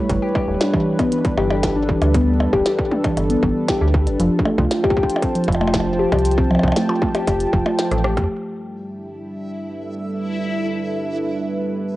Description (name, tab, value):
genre	IDM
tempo	117 BPM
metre	4/4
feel	straight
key	unclear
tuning	A4 = 440 Hz
part	warm analog pad	sustained chords	0.0-12.0 s	G3 to A5	-24 LUFS	right 1 dB	chorus, cassette tape
part	harp-like synth pluck	arpeggios	0.0-8.1 s	E3 to G4	-20 LUFS	left 1 dB	chorus, vintage 12-bit sampler grit, cassette tape, analog delay
part	metallic FM bass	bass	0.1-8.3 s	D1 to F2	-21 LUFS	equal	none
part	electronic kick drum	drums	0.1-8.3 s	none	-22 LUFS	equal	distortion, cassette tape
part	glitchy drum kit	drums	0.1-8.3 s	hi-hat, percussion blips, rim click, snare drum, toms	-25 LUFS	equal	cassette tape, analog delay
part	backwards swelling texture	texture	9.0-12.0 s	E4 to E5	-28 LUFS	left 1 dB	built-in reverb, cassette tape
room	light reverb, digital ambience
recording	home recording on cassette, nothing above 10.4 kHz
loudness	-16 LUFS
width	side -16 dB against mid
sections	0.0-8.3 A section; 8.3-12.0 B section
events	drum fill 7.9-8.3; filter sweep on analog synth pad 8.3-12.0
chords	0.1 G6; 4.2 Fadd9; 8.3 G6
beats	| 0.10 0.61 1.12 1.63 | 2.15 2.66 3.17 3.68 | 4.20 4.71 5.22 5.74 | 6.25 6.76 7.27 7.79 | 8.30 8.81 9.32 9.84 | 10.35 10.86 11.38 11.89